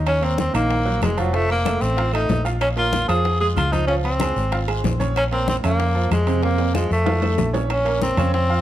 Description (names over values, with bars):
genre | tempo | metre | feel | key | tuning
latin, salsa | 189 BPM | 4/4 | straight | Bb minor | A4 = 441 Hz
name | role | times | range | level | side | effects
bright upright piano | accompaniment | 0.0-8.6 s | C3 to Bb5 | -26 LUFS | right 4 dB | none
hollow-body short-scale fingered electric bass | bass | 0.0-8.6 s | F1 to F2 | -22 LUFS | equal | none
breathy tenor saxophone | melody | 0.1-8.6 s | Gb3 to Ab4 | -22 LUFS | equal | analog delay
bongos | percussion | 0.1-8.6 s | none | -32 LUFS | left 8 dB | none
claves | percussion | 0.1-8.3 s | none | -39 LUFS | right 5 dB | none
congas | percussion | 0.1-8.6 s | none | -29 LUFS | left 2 dB | none
guiro | percussion | 0.1-8.6 s | none | -39 LUFS | left 5 dB | none
timbales | percussion | 0.1-8.3 s | none | -32 LUFS | right 5 dB | none
room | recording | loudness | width
moderate large studio reverb, RT60 1.2 s | dark, warm production | -18 LUFS | side -12 dB against mid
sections
0.0-7.7 A section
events
drum fill 6.4-7.7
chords
0.1 Ebm; 1.3 F; 2.6 Bbm7; 3.9 Db6; 5.2 Bbm; 6.4 Fsus4; 7.1 F; 7.7 Bbm